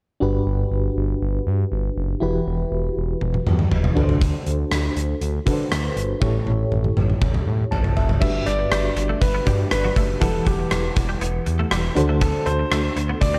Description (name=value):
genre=1980s-style pop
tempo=120 BPM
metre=4/4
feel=straight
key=G major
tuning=A4 = 440 Hz
part: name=FM electric piano with tremolo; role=accompaniment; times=0.2-13.4 s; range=G2 to A5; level=-27 LUFS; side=equal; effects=none
part: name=smooth gliding synth bass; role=bass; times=0.2-13.4 s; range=E1 to D3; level=-26 LUFS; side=equal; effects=none
part: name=gated 80s drum kit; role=drums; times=3.2-13.3 s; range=crash cymbal, hi-hat, kick drum, rim click, toms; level=-24 LUFS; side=equal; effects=none
part: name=clear concert grand piano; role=melody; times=8.2-13.4 s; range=G4 to E5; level=-29 LUFS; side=equal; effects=tape echo
part: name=twelve-string electric guitar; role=riff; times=8.2-13.4 s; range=F#3 to C4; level=-33 LUFS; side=equal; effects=ensemble chorus, tape echo
room=light reverb, small room ambience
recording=dark, warm production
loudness=-21 LUFS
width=mono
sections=0.2-8.2 A section; 8.2-13.4 B section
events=drum fill 3.2-4.2, 6.2-8.2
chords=0.2 Gmaj7; 2.2 Emadd9; 4.0 D7; 6.2 A7; 8.2 Gmaj7; 10.2 Emadd9; 12.0 D7